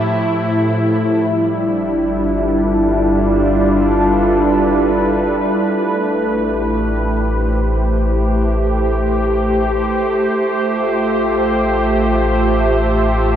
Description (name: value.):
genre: ambient.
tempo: free time.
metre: none.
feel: none.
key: unclear.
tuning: A4 = 440 Hz.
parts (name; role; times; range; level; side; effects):
warm analog pad; sustained chords; 0.0-13.4 s; A2 to E5; -14 LUFS; equal; lush chorus.
organ-like drone; drone; 0.0-1.4 s; F3; -30 LUFS; left 1 dB; none.
rich symphonic violin section; texture; 0.0-1.3 s; G5; -49 LUFS; left 1 dB; none.
round analog bass; bass; 1.3-13.4 s; G1 to A1; -21 LUFS; left 1 dB; none.
room: wet huge ambient reverb, RT60 7.3 s.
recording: none.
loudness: -14 LUFS.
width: side -10 dB against mid.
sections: 0.0-1.3 A section; 1.3-13.4 B section.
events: none.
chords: 0.0 Fmaj7/A; 1.3 G13; 5.8 Am9; 10.4 Fmaj7/A.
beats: free time.